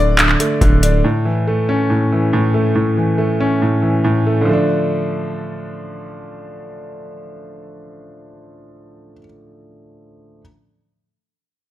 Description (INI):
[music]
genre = hip hop, trap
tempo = 140 BPM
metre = 4/4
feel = half-time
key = D harmonic minor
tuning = A4 = 440 Hz
[part]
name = warm concert grand piano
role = accompaniment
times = 0.0-10.4 s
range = A2 to D5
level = -16 LUFS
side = equal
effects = none
[part]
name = distorted 808-style bass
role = bass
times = 0.0-1.0 s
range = D1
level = -16 LUFS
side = equal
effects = distortion
[part]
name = downlifter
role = sound effects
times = 0.1-1.0 s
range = none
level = barely audible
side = none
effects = none
[part]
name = booming analog drum machine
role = drums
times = 0.2-0.9 s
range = handclaps, hi-hat, kick drum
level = -14 LUFS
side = equal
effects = none
[sound]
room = light reverb, digital ambience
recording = none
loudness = -14 LUFS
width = side -14 dB against mid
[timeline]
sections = 0.0-4.5 A section; 4.5-7.9 B section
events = none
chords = 0.0 D5; 1.0 A; 4.5 Dm